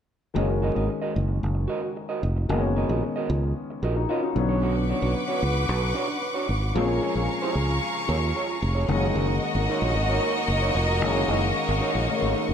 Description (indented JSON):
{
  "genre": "disco",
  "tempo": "112 BPM",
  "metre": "4/4",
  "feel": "straight",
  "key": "F# major",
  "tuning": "A4 = 441 Hz",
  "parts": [
    { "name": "electric guitar through a small old amp", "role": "accompaniment", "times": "0.3-12.5 s", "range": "D4 to D#5", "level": "-30 LUFS", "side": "right 5 dB", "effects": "none" },
    { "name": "warm grand piano", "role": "accompaniment", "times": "0.3-12.5 s", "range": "D3 to E#4", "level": "-29 LUFS", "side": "left 5 dB", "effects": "none" },
    { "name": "fingered electric bass", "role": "bass", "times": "0.4-12.5 s", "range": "E#1 to D#2", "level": "-25 LUFS", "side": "equal", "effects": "none" },
    { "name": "clear studio string section", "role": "sustained chords", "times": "4.6-12.5 s", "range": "G#4 to D6", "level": "-29 LUFS", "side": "left 1 dB", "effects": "none" },
    { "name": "warm studio violin section", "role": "second line", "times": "8.9-12.5 s", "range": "A#3 to D#5", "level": "-27 LUFS", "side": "equal", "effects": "none" }
  ],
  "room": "wet large studio reverb, RT60 1.2 s",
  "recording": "none",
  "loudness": "-22 LUFS",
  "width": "side -8 dB against mid",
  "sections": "0.4-8.9 A section; 8.9-12.5 B section",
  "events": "none",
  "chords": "0.4 F#6; 4.4 Bmadd9; 6.8 A#m7; 8.9 F#6"
}